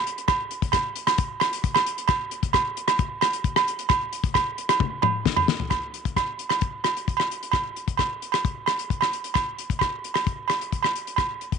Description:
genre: highlife.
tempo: 132 BPM.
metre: 4/4.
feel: straight.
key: none.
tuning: none.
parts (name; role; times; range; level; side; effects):
damped 70s drum kit; drums; 0.1-11.6 s; hi-hat, kick drum, rim click, snare drum, toms; -26 LUFS; left 7 dB; none.
agogo bells; percussion; 0.3-11.3 s; none; -24 LUFS; right 7 dB; none.
room: moderate spring reverb, RT60 2.1 s.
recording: 1960s-style stereo with parts hard left and right, nothing above 10.6 kHz.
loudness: -22 LUFS.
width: side -6 dB against mid.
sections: 0.0-5.7 A section; 5.7-11.6 A section.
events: drum fill 4.8-5.7.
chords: none.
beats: | 0.28 0.73 1.18 1.64 | 2.09 2.54 2.99 3.44 | 3.89 4.35 4.80 5.25 | 5.71 6.16 6.62 7.07 | 7.53 7.99 8.44 8.90 | 9.36 9.81 10.27 10.72 | 11.18.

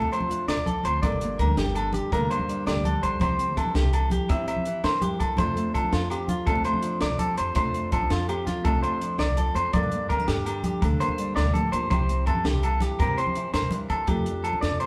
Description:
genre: highlife guitar band.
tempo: 110 BPM (dotted quarters).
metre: 12/8.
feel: straight.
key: F major.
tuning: A4 = 443 Hz.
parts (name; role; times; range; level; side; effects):
flamenco guitar; accompaniment; 0.0-14.9 s; F2 to Bb4; -34 LUFS; equal; none.
clean electric guitar; arpeggios; 0.0-14.9 s; F4 to E5; -30 LUFS; equal; none.
upright bass; bass; 0.0-14.9 s; G1 to G2; -31 LUFS; equal; none.
congas; percussion; 0.0-14.8 s; none; -34 LUFS; equal; none.
compact cocktail drum kit; drums; 0.1-14.9 s; hi-hat, kick drum, snare drum; -32 LUFS; equal; none.
agogo bells; percussion; 0.1-14.9 s; none; -40 LUFS; equal; none.
room: moderate stone room reverb, RT60 1.2 s.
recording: band playing live in one room.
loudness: -25 LUFS.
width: mono.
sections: 0.0-14.1 A section.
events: none.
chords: 0.0 F6; 1.0 Gmadd9; 3.2 C; 5.4 F6; 9.7 Gmadd9; 11.9 C; 14.1 F6.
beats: 0.48 | 1.03 1.57 2.12 2.66 | 3.21 3.75 4.30 4.84 | 5.38 5.93 6.47 7.02 | 7.56 8.11 8.65 9.19 | 9.74 10.28 10.82 11.37 | 11.91 12.45 12.99 13.54 | 14.08 14.62.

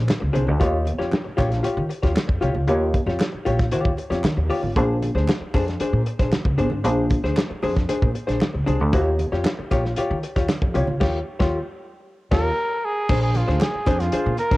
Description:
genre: funk.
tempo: 115 BPM.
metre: 4/4.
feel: straight.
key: unclear.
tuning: A4 = 440 Hz.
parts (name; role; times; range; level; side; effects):
upright bass; bass; 0.0-14.6 s; G1 to Eb3; -23 LUFS; equal; none.
vintage hollow-body jazz guitar; accompaniment; 0.1-14.6 s; D4 to Db5; -25 LUFS; left 2 dB; cassette tape.
warm soul drum kit; drums; 0.1-14.6 s; crash cymbal, hi-hat, kick drum, snare drum; -23 LUFS; equal; vintage 12-bit sampler grit, cassette tape.
congas; percussion; 0.1-14.5 s; none; -34 LUFS; right 4 dB; none.
group handclap; percussion; 0.1-14.0 s; none; -41 LUFS; equal; none.
breathy trumpet; melody; 12.3-14.6 s; F4 to Bb4; -24 LUFS; right 1 dB; cassette tape, analog delay.
room: light reverb.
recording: home recording on cassette.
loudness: -19 LUFS.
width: side -18 dB against mid.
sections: 0.0-13.1 A section; 13.1-14.6 B section.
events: band accent 11.0-13.1.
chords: 0.0 Bb9 (rootless); 0.6 Eb9; 4.8 Bb9; 8.9 Eb9; 13.1 Bb9.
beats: 0.09 | 0.61 1.13 1.65 2.17 | 2.69 3.21 3.73 4.25 | 4.77 5.29 5.81 6.33 | 6.85 7.37 7.89 8.41 | 8.93 9.45 9.97 10.49 | 11.01 11.53 12.05 12.57 | 13.09 13.61 14.13.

